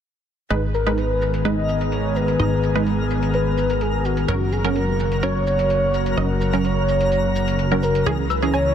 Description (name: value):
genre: progressive house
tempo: 127 BPM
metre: 4/4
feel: straight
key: G# minor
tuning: A4 = 442 Hz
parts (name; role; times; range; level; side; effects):
- airy breathy pad; sustained chords; 0.5-8.7 s; C#3 to G#4; -24 LUFS; left 1 dB; chorus
- wide unison pluck; stabs; 0.5-8.7 s; E3 to D#5; -25 LUFS; right 3 dB; phaser, dub echo
- plucky analog bass; bass; 0.5-8.7 s; F#1 to C#2; -24 LUFS; equal; none
- electronic hi-hat and shaker; drums; 0.5-8.6 s; none; -41 LUFS; equal; overdrive, low-pass filter on hats, low-pass filter on perc, low-pass filter on room
- twinkling granular texture; texture; 1.0-8.7 s; A#4 to A#5; -32 LUFS; left 2 dB; built-in reverb
- warm velvety synth lead; melody; 0.7-8.7 s; F#4 to D#5; -23 LUFS; equal; chorus, dub echo
- tight sequenced synth; arpeggios; 8.1-8.6 s; G#4 to E6; -27 LUFS; left 1 dB; chorus, dub echo
room: light reverb, digital ambience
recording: dense, heavily limited modern master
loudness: -18 LUFS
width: side -9 dB against mid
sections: 0.5-8.7 A section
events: none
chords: 0.5 G#m; 4.3 F#; 8.1 C#m